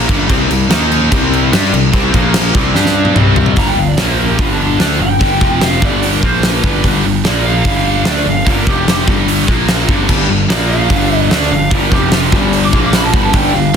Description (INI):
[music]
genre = hard rock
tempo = 147 BPM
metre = 4/4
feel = straight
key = unclear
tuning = A4 = 439 Hz
[part]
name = crunchy overdriven guitar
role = riff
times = 0.0-3.6, 10.1-13.7 s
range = F2 to G4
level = -20 LUFS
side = right 1 dB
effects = spring reverb
[part]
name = distorted electric guitar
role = riff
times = 0.0-13.8 s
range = F2 to G4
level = -18 LUFS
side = left 13 dB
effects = distortion
[part]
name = scooped high-gain guitar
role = riff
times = 0.0-13.8 s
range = F2 to G4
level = -18 LUFS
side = right 13 dB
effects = distortion
[part]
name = overdriven picked electric bass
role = bass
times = 0.0-13.8 s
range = F1 to G2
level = -18 LUFS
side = equal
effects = none
[part]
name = huge arena drum kit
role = drums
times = 0.0-13.8 s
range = crash cymbal, hi-hat, kick drum, snare drum, toms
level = -14 LUFS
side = equal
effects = none
[part]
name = lead guitar through a small cranked amp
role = melody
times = 3.6-13.8 s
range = D4 to D6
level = -19 LUFS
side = right 2 dB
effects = overdrive, plate reverb, tape echo
[sound]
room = light reverb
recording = dense, heavily limited modern master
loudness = -10 LUFS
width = side -7 dB against mid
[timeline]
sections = 0.0-3.6 A section; 3.6-13.8 B section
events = drum fill 2.8-3.6; lead electric guitar solo 3.6-13.8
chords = 0.1 G5; 0.3 C5; 0.7 Eb5; 1.1 C5; 2.1 Bb5; 2.5 C5; 2.8 G5; 3.2 C5; 3.6 G5; 4.0 Bb5; 4.4 G5; 5.4 F5; 5.8 G5; 6.2 Bb5; 6.6 G5; 7.2 Bb5; 7.7 G5; 8.7 F5; 9.1 G5; 9.5 Bb5; 9.9 G5; 10.5 Bb5; 10.9 G5; 11.9 F5; 12.3 G5; 12.7 Bb5; 13.1 G5